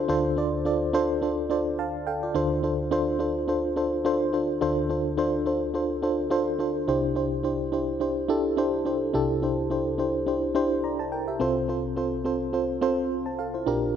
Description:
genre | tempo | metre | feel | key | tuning
pop | 106 BPM | 4/4 | swing 55% on 16ths | unclear | A4 = 442 Hz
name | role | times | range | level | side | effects
FM electric piano with auto-pan | solo | 0.0-14.0 s | Bb1 to Bb5 | -24 LUFS | equal | none
room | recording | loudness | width
moderate lush hall reverb, RT60 2.6 s | none | -24 LUFS | side -8 dB against mid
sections
0.0-2.4 A section; 2.4-6.9 B section; 6.9-14.0 C section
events
FM electric piano fill 1.2-2.4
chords
0.0 Dm7; 6.9 Cadd9; 11.4 F/C

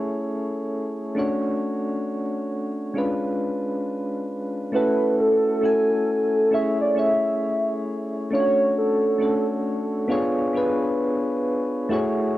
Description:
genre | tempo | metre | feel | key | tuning
lo-fi hip hop | 67 BPM | 4/4 | swing 62% on 16ths | unclear | A4 = 440 Hz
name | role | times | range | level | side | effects
soft electric-piano-like synth keys | accompaniment | 0.0-12.4 s | G#3 to G#5 | -23 LUFS | left 1 dB | chorus, tremolo, cassette tape
warbly nostalgic lead | melody | 4.7-9.5 s | A4 to E5 | -22 LUFS | right 1 dB | chorus, tape echo
room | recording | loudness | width
light reverb | home recording on cassette | -21 LUFS | side -15 dB against mid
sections
0.0-4.7 A section; 4.7-12.4 B section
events
none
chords
0.0 Amaj7; 1.2 Dmaj7; 2.9 C#7b9; 4.7 F#m9; 6.5 Amaj7; 8.3 Dmaj7; 10.1 C#7b9

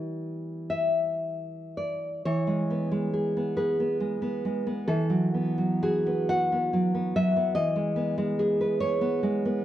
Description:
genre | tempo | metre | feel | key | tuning
romantic piece for solo classical guitar | 31-50 BPM (dotted quarters) | 6/8 | rubato | E major | A4 = 436 Hz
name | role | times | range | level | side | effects
nylon-string guitar | solo | 0.0-9.6 s | E3 to F#5 | -25 LUFS | equal | none
room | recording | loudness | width
moderate recital hall reverb, RT60 1.5 s | worn, warbling old tape, cassette tape, warbly pitch drift | -24 LUFS | side -12 dB against mid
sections
0.0-2.3 A section; 2.3-9.6 B section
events
none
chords
0.0 Em; 2.3 E; 4.9 B5/E; 7.6 E

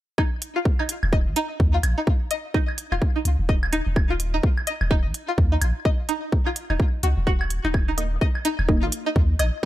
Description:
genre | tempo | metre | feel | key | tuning
minimal techno | 127 BPM | 4/4 | swing 60% on 16ths | unclear | A4 = 440 Hz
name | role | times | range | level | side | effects
string-like resonator pluck | riff | 0.2-9.7 s | Eb4 to Eb5 | -28 LUFS | equal | phaser, lush chorus, sidechain pumping, digital delay
electronic kick drum | drums | 0.2-9.7 s | none | -21 LUFS | equal | small room ambience
claves | percussion | 0.2-9.5 s | none | -32 LUFS | right 2 dB | overdrive, small room ambience, ping-pong delay
electronic hi-hat | drums | 0.4-9.5 s | none | -28 LUFS | right 1 dB | small room ambience
punchy sub bass | bass | 1.0-9.5 s | Eb1 to Eb2 | -23 LUFS | equal | tube saturation, sidechain pumping
filtered dub chord stab | stabs | 8.0-8.8 s | Bb3 to Eb5 | -29 LUFS | right 1 dB | phaser, ping-pong delay
room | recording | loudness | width
little or no reverb | none | -20 LUFS | side -14 dB against mid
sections
0.2-9.7 A section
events
none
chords
0.2 Eb5

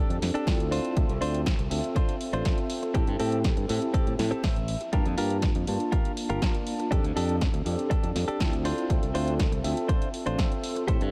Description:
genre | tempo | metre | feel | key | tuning
filtered disco house | 121 BPM | 4/4 | straight | unclear | A4 = 442 Hz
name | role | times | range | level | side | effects
bell-like tine electric piano | accompaniment | 0.0-11.1 s | Bb3 to A5 | -34 LUFS | equal | phaser, sidechain pumping, low-pass filter
direct-recorded clean electric guitar | riff | 0.0-11.0 s | C4 to E5 | -36 LUFS | equal | sidechain pumping, low-pass filter
modern bright fingered electric bass | bass | 0.1-11.1 s | G1 to A2 | -32 LUFS | equal | sidechain pumping, low-pass filter
punchy analog drum machine | drums | 0.1-11.1 s | hi-hat, snare drum | -38 LUFS | equal | sidechain pumping on hats
electronic kick drum | drums | 0.5-11.0 s | none | -29 LUFS | equal | none
room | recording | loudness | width
light reverb, digital ambience | none | -27 LUFS | mono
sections
0.0-11.1 A section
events
clean electric guitar fill 4.2-4.9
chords
0.0 F69; 0.7 Dm7; 2.9 Am7; 4.9 Gm7; 6.9 F69; 8.7 Dm7

